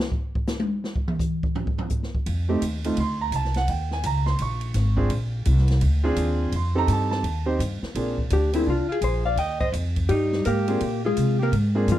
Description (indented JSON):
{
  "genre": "jazz, small-group swing and bop",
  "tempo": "168 BPM",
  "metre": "4/4",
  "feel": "swing 63% on 8ths",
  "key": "Bb mixolydian",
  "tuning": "A4 = 437 Hz",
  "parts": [
    { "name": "open jazz drum kit", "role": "drums", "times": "0.0-12.0 s", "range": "hi-hat, kick drum, ride cymbal, snare drum, toms", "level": "-30 LUFS", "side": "equal", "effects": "none" },
    { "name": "upright bass", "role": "bass", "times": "2.3-12.0 s", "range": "Ab1 to C3", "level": "-23 LUFS", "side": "equal", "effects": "none" },
    { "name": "warm grand piano", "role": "accompaniment", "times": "2.5-12.0 s", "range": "A3 to Db6", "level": "-26 LUFS", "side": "right 2 dB", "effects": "none" },
    { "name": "vintage hollow-body jazz guitar", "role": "melody", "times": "8.3-12.0 s", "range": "F3 to G5", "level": "-24 LUFS", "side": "left 3 dB", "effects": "none" },
    { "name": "breathy alto saxophone", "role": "second line", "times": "8.3-12.0 s", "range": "C4 to Eb5", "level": "-30 LUFS", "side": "right 4 dB", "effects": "none" }
  ],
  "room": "light reverb",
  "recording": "dark, warm production",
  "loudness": "-21 LUFS",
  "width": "side -13 dB against mid",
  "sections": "0.0-8.0 A section; 8.0-12.0 B section",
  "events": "drum solo 0.0-2.3",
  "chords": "0.0 N.C.; 2.3 F7; 3.7 Eb5; 5.1 Bb9; 6.5 F9; 8.0 Bb9; 9.4 Ebadd9; 10.8 Bb9"
}